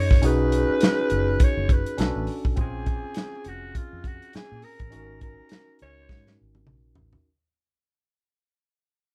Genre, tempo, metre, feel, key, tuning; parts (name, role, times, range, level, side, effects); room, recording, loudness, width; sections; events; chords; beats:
lush 1970s-style soul; 102 BPM; 4/4; swing 58% on 16ths; A4 = 440 Hz
growling alto saxophone; melody; 0.0-6.4 s; F4 to Db5; -32 LUFS; equal
barky tine electric piano; accompaniment; 0.0-7.3 s; C4 to Bb4; -31 LUFS; equal
vintage muted fingered electric bass; bass; 0.0-7.1 s; F1 to Bb2; -30 LUFS; equal
warm soul drum kit; drums; 0.1-7.3 s; hi-hat, kick drum, snare drum, toms; -24 LUFS; equal
light reverb; band playing live in one room; -23 LUFS; mono
0.0-7.3 A section
fade-out 0.0-7.3; drum fill 6.1-7.3
0.2 Cb69; 2.0 Cbm9; 2.6 Bbm9; 4.9 Ab9sus4
| 0.23 0.82 1.40 1.99 | 2.58 3.16 3.75 4.34 | 4.92 5.51 6.10 6.68